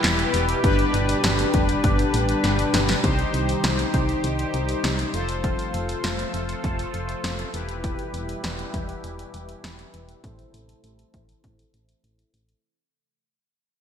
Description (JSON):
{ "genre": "synth-pop", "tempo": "100 BPM", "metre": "4/4", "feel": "straight", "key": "unclear", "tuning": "A4 = 440 Hz", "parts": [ { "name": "analog synth brass", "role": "accompaniment", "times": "0.0-12.6 s", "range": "D4 to C5", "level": "-26 LUFS", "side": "left 3 dB", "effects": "chorus, low-pass filter" }, { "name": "sweeping resonant pad", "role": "sustained chords", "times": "0.0-12.6 s", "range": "B2 to A4", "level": "-30 LUFS", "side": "right 2 dB", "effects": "chorus, low-pass filter" }, { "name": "solid FM bass", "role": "bass", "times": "0.0-12.5 s", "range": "E1 to C2", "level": "-27 LUFS", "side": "equal", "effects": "none" }, { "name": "punchy analog drum machine", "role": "drums", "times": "0.0-12.6 s", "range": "handclaps, hi-hat, kick drum, snare drum", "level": "-26 LUFS", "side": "equal", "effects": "gated reverb" } ], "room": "moderate lush hall reverb, RT60 2.0 s", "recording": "bright 1980s-style digital production", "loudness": "-21 LUFS", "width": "side -8 dB against mid", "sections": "0.0-3.0 A section; 3.0-12.6 B section", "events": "drum fill 2.4-3.0; fade-out 3.0-12.6; filter sweep 3.0-12.6", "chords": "0.0 Em; 0.6 G; 3.0 Cm; 5.1 F; 7.5 Em; 10.2 Am", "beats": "0.04 | 0.64 1.24 1.84 2.44 | 3.04 3.64 4.24 4.84 | 5.44 6.04 6.64 7.24 | 7.84 8.44 9.04 9.64 | 10.24 10.84 11.44 12.04" }